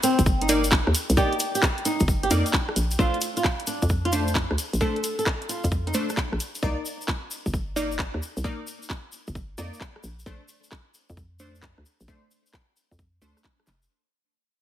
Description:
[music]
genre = UK garage, two-step garage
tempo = 132 BPM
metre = 4/4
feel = swing 67% on 16ths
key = unclear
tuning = A4 = 438 Hz
[part]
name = flamenco guitar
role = melody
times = 0.0-5.9 s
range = C4 to A4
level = -28 LUFS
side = right 1 dB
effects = tape echo
[part]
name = garage drum kit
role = drums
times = 0.0-13.8 s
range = handclaps, hi-hat, rim click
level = -27 LUFS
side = equal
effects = none
[part]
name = tube shaker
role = percussion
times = 0.0-13.9 s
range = none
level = -33 LUFS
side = left 2 dB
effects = none
[part]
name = hollow knocking FM bass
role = bass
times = 0.2-13.9 s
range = F1 to F2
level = -26 LUFS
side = equal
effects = none
[part]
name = electronic kick drum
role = drums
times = 0.2-13.6 s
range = none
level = -26 LUFS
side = equal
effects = none
[part]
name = punchy chord stab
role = stabs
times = 0.5-13.4 s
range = A3 to D5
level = -28 LUFS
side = equal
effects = chorus, tape echo
[sound]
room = moderate digital room reverb, RT60 1.0 s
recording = heavily compressed radio sound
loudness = -22 LUFS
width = side -11 dB against mid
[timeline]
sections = 0.0-13.9 A section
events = fade-out 0.0-13.9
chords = 0.0 Cm9 (rootless); 2.8 Bbmaj9; 6.6 Cm9 (rootless); 10.0 Bbmaj9 (rootless)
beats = 0.26 0.72 | 1.17 1.62 2.08 2.53 | 2.99 3.44 3.90 4.35 | 4.81 5.26 5.72 6.17 | 6.62 7.08 7.53 7.99 | 8.44 8.90 9.35 9.81 | 10.26 10.72 11.17 11.62 | 12.08 12.53 12.99 13.44

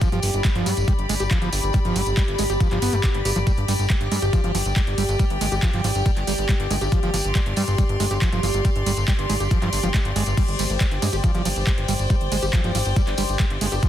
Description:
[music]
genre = psychedelic trance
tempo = 139 BPM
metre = 4/4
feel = straight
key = G major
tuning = A4 = 440 Hz
[part]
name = evolving wavetable pad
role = sustained chords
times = 0.0-13.9 s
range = G4 to C5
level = -29 LUFS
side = equal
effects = phaser, built-in reverb, sidechain pumping
[part]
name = screaming distorted acid line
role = riff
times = 0.0-13.9 s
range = F3 to G4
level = -28 LUFS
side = right 2 dB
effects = distortion, chorus, auto-pan, sidechain pumping, ping-pong delay
[part]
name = electronic kick drum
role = drums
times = 0.0-13.9 s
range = none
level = -20 LUFS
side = equal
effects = overdrive, studio reverb
[part]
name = garage drum kit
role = drums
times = 0.0-13.9 s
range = crash cymbal, handclaps, hi-hat, ride cymbal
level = -29 LUFS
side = right 2 dB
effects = overdrive, studio reverb
[part]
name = tambourine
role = percussion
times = 0.0-13.9 s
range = none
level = -34 LUFS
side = left 2 dB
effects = none
[part]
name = rich chamber string section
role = texture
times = 0.0-13.9 s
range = G4 to C6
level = -30 LUFS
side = left 3 dB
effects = sidechain pumping
[part]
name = fat analog bass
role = bass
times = 0.1-13.8 s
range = G1 to G2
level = -24 LUFS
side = equal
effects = none
[sound]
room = digital ambience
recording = dense, heavily limited modern master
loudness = -19 LUFS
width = side -11 dB against mid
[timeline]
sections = 0.0-13.9 A section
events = none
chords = 0.0 G5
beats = | 0.01 0.45 0.88 1.31 | 1.74 2.17 2.60 3.04 | 3.47 3.90 4.33 4.76 | 5.20 5.63 6.06 6.49 | 6.92 7.35 7.79 8.22 | 8.65 9.08 9.51 9.94 | 10.38 10.81 11.24 11.67 | 12.10 12.53 12.96 13.40 | 13.83

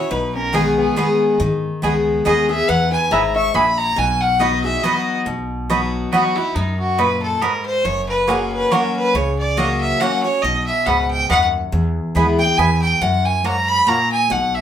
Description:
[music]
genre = bluegrass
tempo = 139 BPM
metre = 3/4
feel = swing 55% on 8ths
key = B major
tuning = A4 = 439 Hz
[part]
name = clear fiddle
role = melody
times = 0.0-14.6 s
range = D#4 to C#6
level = -18 LUFS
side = equal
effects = none
[part]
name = lap resonator guitar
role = second line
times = 0.0-5.2 s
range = B3 to E5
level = -24 LUFS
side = left 5 dB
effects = none
[part]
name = picked steel-string acoustic guitar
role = accompaniment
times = 0.0-14.6 s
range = E2 to G#4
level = -20 LUFS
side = left 2 dB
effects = none
[part]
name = upright bass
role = bass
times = 0.1-14.6 s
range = F#1 to G#2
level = -25 LUFS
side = equal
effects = none
[part]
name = mandolin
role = stabs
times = 0.5-14.0 s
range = A#3 to B5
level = -22 LUFS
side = right 4 dB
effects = none
[sound]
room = wet studio reverb, RT60 0.5 s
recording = band playing live in one room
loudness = -15 LUFS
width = side -9 dB against mid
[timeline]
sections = 0.0-5.3 A section; 5.3-14.6 B section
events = fiddle solo 5.3-14.6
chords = 0.1 G#m/B; 2.7 E; 4.0 B; 7.8 F#; 10.4 B; 11.7 E; 13.0 F#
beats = | 0.11 0.54 0.97 | 1.40 1.83 2.26 | 2.69 3.12 3.55 | 3.98 4.41 4.84 | 5.27 5.70 6.13 | 6.56 6.99 7.42 | 7.85 8.28 8.71 | 9.14 9.57 10.00 | 10.43 10.87 11.29 | 11.73 12.16 12.59 | 13.02 13.45 13.88 | 14.31

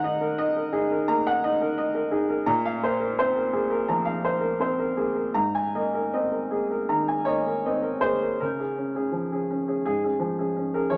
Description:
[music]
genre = neoclassical minimalist piano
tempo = 77-90 BPM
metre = 4/4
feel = rubato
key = Db major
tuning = A4 = 435 Hz
[part]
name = warm upright piano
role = solo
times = 0.0-11.0 s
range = Ab2 to Bb5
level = -26 LUFS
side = equal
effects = none
[sound]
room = moderate large studio reverb, RT60 1.1 s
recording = none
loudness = -26 LUFS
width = mono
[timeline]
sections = 0.0-8.4 A section; 8.4-11.0 B section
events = none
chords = 0.0 Ebm; 2.5 Bbsus2; 5.3 Absus2; 8.4 Db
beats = 0.38 1.07 1.76 | 2.46 3.17 3.88 4.60 | 5.35 6.13 6.90 7.65 | 8.40 9.13 9.86 10.56

